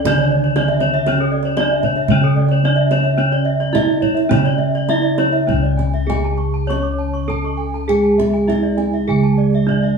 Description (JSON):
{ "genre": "Balinese gamelan", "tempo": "100-118 BPM", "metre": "4/4", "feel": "straight", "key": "C# pelog", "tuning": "A4 = 441 Hz", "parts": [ { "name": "gamelan-type bronze metallophone", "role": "melody", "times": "0.0-10.0 s", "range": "C#4 to C#5", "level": "-22 LUFS", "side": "right 3 dB", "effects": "none" }, { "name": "gamelan-type bronze metallophone", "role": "accompaniment", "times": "0.0-10.0 s", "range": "C#3 to C#4", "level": "-22 LUFS", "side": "right 3 dB", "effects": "none" }, { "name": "gamelan-type bronze metallophone", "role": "arpeggios", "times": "0.0-9.5 s", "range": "D5+20c to D6+20c", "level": "-25 LUFS", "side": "right 2 dB", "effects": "none" }, { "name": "gamelan-type bossed gongs", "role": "bass", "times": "0.0-10.0 s", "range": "C#2 to C#5", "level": "-19 LUFS", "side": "equal", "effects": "none" }, { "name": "gamelan-type bronze metallophone", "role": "arpeggios", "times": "0.1-10.0 s", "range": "A4-20c to C#6", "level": "-22 LUFS", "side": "left 2 dB", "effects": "none" }, { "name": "kendang", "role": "percussion", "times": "0.1-9.9 s", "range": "none", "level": "-24 LUFS", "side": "right 2 dB", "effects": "none" } ], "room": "wet stone room reverb, RT60 0.9 s", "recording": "band playing live in one room, small room ambience", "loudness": "-14 LUFS", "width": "side -5 dB against mid", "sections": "0.0-5.5 A section; 5.5-10.0 B section", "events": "none", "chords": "none" }